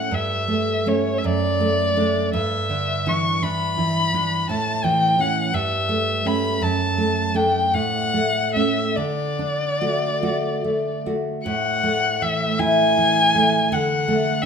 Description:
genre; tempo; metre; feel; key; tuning
romantic duo for violin and classical guitar; 47-58 BPM (dotted quarters); 6/8; rubato; D major; A4 = 440 Hz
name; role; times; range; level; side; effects
warm violin; melody; 0.0-14.5 s; C#5 to C#6; -21 LUFS; left 3 dB; none
nylon-string guitar; accompaniment; 0.0-14.5 s; F#2 to F#4; -22 LUFS; right 2 dB; none
room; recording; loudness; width
moderate recital hall reverb, RT60 1.4 s; minimal, uncompressed stereo recording; -18 LUFS; side -6 dB against mid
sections
0.0-11.5 A section; 11.5-14.5 B section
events
none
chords
0.1 A7/G; 1.2 D/F#; 2.3 Em7/G; 4.5 A; 5.5 A7/G; 6.6 D/F#; 7.7 A; 9.0 D; 11.5 A5; 13.7 D

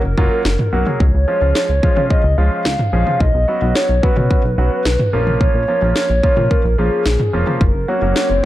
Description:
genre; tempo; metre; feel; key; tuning
synth-pop; 109 BPM; 4/4; straight; Db mixolydian; A4 = 440 Hz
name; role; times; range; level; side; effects
hollow clarinet-like synth lead; melody; 0.0-8.5 s; Ab4 to F5; -19 LUFS; equal; chorus, slapback echo
chorused synth bass; bass; 0.0-8.4 s; F1 to Db3; -17 LUFS; equal; none
clear concert grand piano; accompaniment; 0.2-8.3 s; F3 to Ab4; -22 LUFS; right 2 dB; none
house drum kit; drums; 0.2-8.3 s; kick drum, snare drum, toms; -17 LUFS; equal; none
swell; sound effects; 8.0-8.5 s; none; -26 LUFS; left 6 dB; none
room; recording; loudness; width
light reverb; dark, warm production; -13 LUFS; side -14 dB against mid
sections
0.0-8.5 A section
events
swell 8.0-8.5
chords
0.0 Gb; 1.0 Db; 3.2 Cbsus2; 5.1 Bbm7; 7.6 Gb

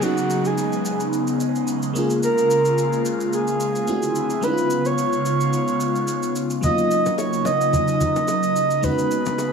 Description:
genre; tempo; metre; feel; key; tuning
amapiano; 109 BPM; 4/4; swing 55% on 16ths; Eb minor; A4 = 440 Hz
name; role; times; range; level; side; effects
breathy flute-like synth lead; melody; 0.0-9.5 s; F#4 to Eb5; -22 LUFS; right 2 dB; chorus, tape echo
FM electric piano with soft pad layer; accompaniment; 0.0-9.5 s; F#3 to G#4; -25 LUFS; equal; chorus, tremolo
airy breathy pad; sustained chords; 0.0-9.5 s; Db3 to F4; -24 LUFS; equal; chorus, phaser
shaker; drums; 0.0-9.5 s; none; -35 LUFS; right 1 dB; none
downlifter; sound effects; 0.0-2.2 s; none; -39 LUFS; left 2 dB; none
congas and bongos; percussion; 6.6-9.5 s; none; -27 LUFS; left 2 dB; none
room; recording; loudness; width
moderate concert hall reverb, RT60 2.1 s; small room ambience; -18 LUFS; side -6 dB against mid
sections
0.0-9.5 A section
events
kick muted 4.4-6.6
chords
0.0 B69; 2.0 Bbm7; 3.9 D9; 4.4 Db7; 6.6 Ebm7; 8.8 B69

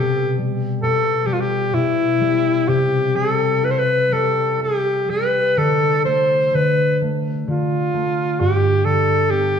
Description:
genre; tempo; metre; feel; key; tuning
celtic folk; 62-68 BPM; 3/4; rubato; D dorian; A4 = 444 Hz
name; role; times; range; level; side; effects
warm alto saxophone; melody; 0.0-9.6 s; E4 to C5; -18 LUFS; left 1 dB; none
concert harp; accompaniment; 0.0-9.6 s; G2 to E4; -21 LUFS; equal; none
room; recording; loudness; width
wet concert hall reverb, RT60 1.7 s; studio reverb; -16 LUFS; side -7 dB against mid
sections
0.0-9.6 A section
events
none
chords
0.0 Em/B; 2.7 C; 5.6 Dm; 8.4 G

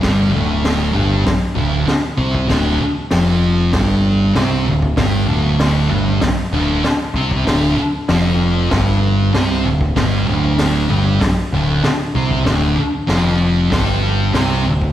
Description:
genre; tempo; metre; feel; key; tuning
garage rock duo or trio; 96 BPM; 4/4; straight; unclear; A4 = 440 Hz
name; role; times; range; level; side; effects
thick fuzz guitar; riff; 0.0-14.9 s; D2 to C4; -16 LUFS; equal; distortion, slapback echo
growling picked electric bass; bass; 0.0-14.9 s; D1 to C2; -18 LUFS; equal; overdrive
raw garage drum kit; drums; 0.0-14.9 s; hi-hat, kick drum, snare drum; -21 LUFS; equal; none
room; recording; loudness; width
small room ambience; live gig heard through the venue's PA, recital hall reverb; -14 LUFS; side -12 dB against mid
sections
0.0-14.9 A section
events
none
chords
0.0 D5

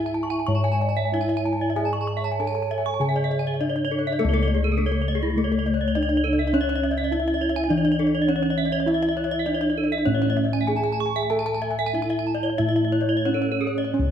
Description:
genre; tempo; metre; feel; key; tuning
Balinese gamelan; 87-103 BPM; 4/4; straight; C# pelog; A4 = 440 Hz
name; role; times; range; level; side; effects
gamelan-type bronze metallophone; melody; 0.0-14.1 s; A3 to C#5; -25 LUFS; right 1 dB; none
gamelan-type bronze metallophone; arpeggios; 0.0-14.0 s; G#4 to C#6; -28 LUFS; left 5 dB; none
gamelan-type bossed gongs; bass; 0.0-14.1 s; C#2 to A4; -26 LUFS; left 1 dB; none
gamelan-type bronze metallophone; arpeggios; 0.1-14.1 s; E4 to C#6; -29 LUFS; right 6 dB; none
mellow hollow low xiao; second line; 0.2-3.9 s; C#5 to G#5; -32 LUFS; right 7 dB; none
room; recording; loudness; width
moderate recital hall reverb, RT60 1.4 s; none; -21 LUFS; side -9 dB against mid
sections
0.0-4.2 A section; 4.2-14.0 B section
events
none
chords
none

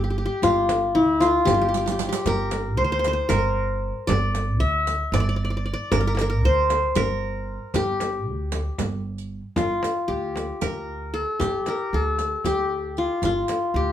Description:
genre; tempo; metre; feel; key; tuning
Turkish makam ensemble; 230 BPM (eighths); 7/8; straight; G makam huseyni; A4 = 438 Hz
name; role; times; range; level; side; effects
qanun; melody; 0.0-13.9 s; E4-30c to E5-30c; -23 LUFS; left 2 dB; none
upright bass; bass; 0.0-13.9 s; G1 to D2; -26 LUFS; right 1 dB; none
frame drum; percussion; 0.4-13.6 s; none; -29 LUFS; equal; none
riq; percussion; 0.4-13.6 s; none; -32 LUFS; right 9 dB; none
room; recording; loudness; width
moderate studio reverb, RT60 0.6 s; minimal, uncompressed stereo recording; -21 LUFS; side -10 dB against mid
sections
0.0-9.6 A section; 9.6-13.9 B section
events
drum fill 1.7-2.3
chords
none

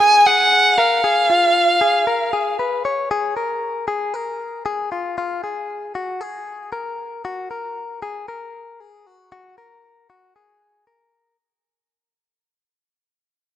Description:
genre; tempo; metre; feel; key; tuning
indie pop; 116 BPM; 4/4; straight; F# major; A4 = 440 Hz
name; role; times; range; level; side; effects
warm violin; melody; 0.0-2.6 s; E#5 to G#5; -13 LUFS; right 1 dB; digital delay
direct-recorded clean electric guitar; arpeggios; 0.0-11.4 s; E#4 to C#5; -23 LUFS; left 4 dB; none
room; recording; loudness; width
moderate lush hall reverb, RT60 2.9 s; rough home demo mix; -16 LUFS; side -11 dB against mid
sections
0.0-3.1 A section; 3.1-11.4 B section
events
fade-out 3.1-11.4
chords
0.0 G#sus2; 1.0 C#; 3.1 A#5; 7.2 F#add9

